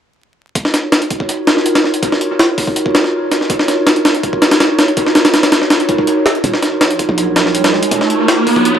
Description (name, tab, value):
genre	drum and bass, jungle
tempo	163 BPM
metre	4/4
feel	straight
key	Eb minor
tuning	A4 = 440 Hz
part	warbly tape-like pad	sustained chords	0.8-8.8 s	Eb4 to Db5	-15 LUFS	right 1 dB	chorus, built-in reverb
part	breakbeat sampler-style drum kit	drums	0.6-8.8 s	hi-hat, kick drum, snare drum	-13 LUFS	equal	high-pass filter on kick, high-pass filter on hats, high-pass filter on snare, dub echo
part	long sustained 808-style bass	bass	6.4-8.8 s	Eb1 to Bb1	-21 LUFS	equal	high-pass filter
part	riser	sound effects	7.2-8.8 s	none	-17 LUFS	right 1 dB	none
room	moderate plate reverb, RT60 1.4 s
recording	echo-heavy mix, vinyl crackle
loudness	-11 LUFS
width	side -9 dB against mid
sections	0.6-6.4 A section; 6.4-8.8 B section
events	build-up 6.4-8.8; riser 7.2-8.8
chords	0.6 Ebm7